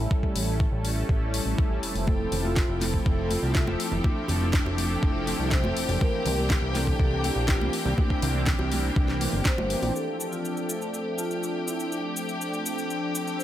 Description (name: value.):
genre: nu-disco, nu disco.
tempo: 122 BPM.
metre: 4/4.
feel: straight.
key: D minor.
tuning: A4 = 440 Hz.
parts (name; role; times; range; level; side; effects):
warm analog pad; accompaniment; 0.0-13.4 s; E3 to E5; -30 LUFS; right 1 dB; chorus, sidechain pumping, digital delay.
fat analog bass; bass; 0.0-9.9 s; F1 to C2; -28 LUFS; equal; tube saturation, sidechain pumping.
electronic kick drum; drums; 0.1-9.6 s; none; -24 LUFS; equal; overdrive.
house drum kit; drums; 0.4-13.4 s; cabasa, finger snaps, hi-hat, snare drum; -32 LUFS; left 1 dB; overdrive.
vibraphone with soft mallets; melody; 2.1-13.4 s; D4 to C5; -33 LUFS; equal; digital delay.
bright chamber string section; sustained chords; 2.1-13.4 s; G4 to G5; -35 LUFS; left 4 dB; sidechain pumping, low-pass filter.
congas and bongos; percussion; 2.1-9.9 s; none; -35 LUFS; right 1 dB; none.
room: digital ambience.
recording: none.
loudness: -24 LUFS.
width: side -12 dB against mid.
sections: 0.0-9.9 A section; 9.9-13.4 B section.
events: none.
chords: 0.0 A7; 1.8 Fmaj7; 6.0 C9; 9.9 Dm7.